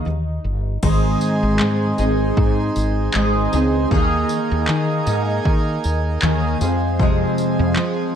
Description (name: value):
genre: acoustic pop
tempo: 78 BPM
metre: 4/4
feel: swing 55% on 16ths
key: Ab major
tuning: A4 = 440 Hz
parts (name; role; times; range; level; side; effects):
- picked steel-string acoustic guitar; accompaniment; 0.0-8.1 s; F2 to Ab4; -20 LUFS; equal; double-tracked left and right
- woody fretless electric bass; bass; 0.1-8.1 s; G1 to F3; -21 LUFS; equal; ensemble chorus
- hand-pumped harmonium; sustained chords; 0.8-8.2 s; Eb4 to Ab5; -26 LUFS; right 4 dB; none
- 80s electronic pad drums; drums; 0.8-8.0 s; crash cymbal, handclaps, kick drum, tambourine; -22 LUFS; equal; none
room: little or no reverb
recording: dark, warm production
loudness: -16 LUFS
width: side -8 dB against mid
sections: 0.8-8.2 A section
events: none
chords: 0.0 Ebsus4; 0.8 Ab; 3.9 Ebsus4; 6.6 Fm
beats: 0.06 | 0.83 1.60 2.37 3.14 | 3.91 4.68 5.46 6.23 | 7.00 7.77